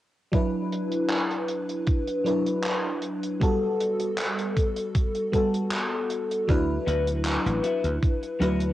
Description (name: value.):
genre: vaporwave.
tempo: 78 BPM.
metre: 4/4.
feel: straight.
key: D major.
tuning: A4 = 440 Hz.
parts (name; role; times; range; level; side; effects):
FM electric piano with soft pad layer; accompaniment; 0.3-8.7 s; F#3 to B4; -25 LUFS; equal; phaser, lush chorus, cassette tape, tape echo.
compact cocktail drum kit; drums; 0.3-8.7 s; handclaps, hi-hat; -31 LUFS; right 1 dB; low-pass filter on hats, cassette tape, low-pass filter on snare, low-pass filter on room.
electronic kick drum; drums; 0.3-8.2 s; none; -24 LUFS; equal; overdrive, cassette tape.
dry thumbed slap bass; bass; 6.5-8.7 s; A1 to D2; -27 LUFS; equal; none.
clean electric guitar; riff; 6.9-8.6 s; B3 to F#4; -36 LUFS; left 4 dB; lush chorus, cassette tape, tape echo.
room: light reverb, studio reverb.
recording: home recording on cassette.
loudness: -23 LUFS.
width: side -14 dB against mid.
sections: 0.3-8.7 A section.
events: none.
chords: 0.3 D69; 3.4 Gmaj9; 6.5 D69.